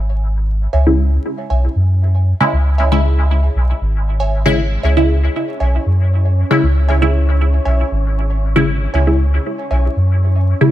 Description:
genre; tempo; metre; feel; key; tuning
dub techno; 117 BPM; 4/4; straight; C# minor; A4 = 440 Hz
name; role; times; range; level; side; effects
filtered dub chord stab; stabs; 0.0-10.7 s; C#3 to E4; -17 LUFS; equal; phaser, dub echo
soft dub sub bass; bass; 0.0-10.5 s; G#1 to F#2; -14 LUFS; equal; none
wavetable chord stab; riff; 0.7-9.9 s; C#5 to G#5; -26 LUFS; right 3 dB; dub echo
wind-like tuned noise texture; texture; 5.4-10.7 s; C#4 to C#5; -28 LUFS; equal; built-in reverb
room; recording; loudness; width
light reverb; dark, warm production, vinyl crackle; -13 LUFS; side -13 dB against mid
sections
0.0-10.7 A section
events
none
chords
0.0 C#m

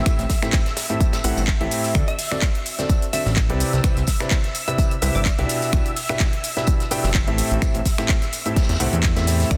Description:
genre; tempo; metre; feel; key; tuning
piano house; 127 BPM; 4/4; swing 54% on 16ths; A dorian; A4 = 440 Hz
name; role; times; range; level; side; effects
analog string pad; sustained chords; 0.0-9.6 s; E5 to E6; -35 LUFS; equal; ensemble chorus, sidechain pumping
clear concert grand piano; riff; 0.0-9.6 s; A2 to G5; -28 LUFS; equal; sidechain pumping, delay
fat analog bass; bass; 0.0-9.6 s; F#1 to E2; -24 LUFS; equal; sidechain pumping
electronic kick drum; drums; 0.1-9.6 s; none; -22 LUFS; equal; none
house drum kit; drums; 0.1-9.6 s; finger snaps, handclaps, hi-hat, shaker; -29 LUFS; equal; none
warm soul drum kit; drums; 0.1-9.6 s; hi-hat, snare drum, tambourine; -37 LUFS; equal; sidechain pumping on hats, high-pass filter on hats, soft clipping on snare, high-pass filter on snare, sidechain pumping on perc, high-pass filter on perc, high-pass filter on room
glassy wavetable pluck; melody; 2.1-5.5 s; D5 to E5; -35 LUFS; equal; chorus, delay
room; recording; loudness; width
light reverb, small room ambience; dense, heavily limited modern master; -21 LUFS; mono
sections
0.0-9.6 A section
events
none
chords
0.0 Am7; 1.9 D7; 3.6 Cmaj9; 5.5 G6/B; 7.4 Am7

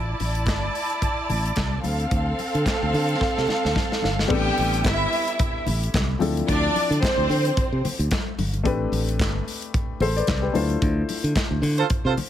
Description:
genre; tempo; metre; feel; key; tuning
disco; 110 BPM; 4/4; swing 56% on 16ths; D dorian; A4 = 443 Hz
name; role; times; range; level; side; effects
rich studio string section; second line; 0.0-7.8 s; C4 to A5; -25 LUFS; right 1 dB; tape echo
modern bright fingered electric bass; bass; 0.0-12.1 s; G1 to D3; -24 LUFS; equal; none
modern studio drum kit; drums; 0.2-12.3 s; crash cymbal, handclaps, hi-hat, kick drum, snare drum; -26 LUFS; equal; none
congas; percussion; 0.2-12.3 s; none; -32 LUFS; left 4 dB; none
warm baby grand piano; accompaniment; 4.3-12.3 s; F3 to D5; -28 LUFS; left 5 dB; none
warm horn section; stabs; 11.8-12.1 s; F4 to C5; -24 LUFS; right 8 dB; none
room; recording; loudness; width
little or no reverb; none; -20 LUFS; side -11 dB against mid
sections
0.0-4.3 A section; 4.3-12.3 B section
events
drum fill 3.2-4.3; band accent 10.8-12.3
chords
0.0 Am7; 1.8 Dm7; 4.3 Am11; 6.2 Dm9; 8.6 Am11; 10.5 Dm9

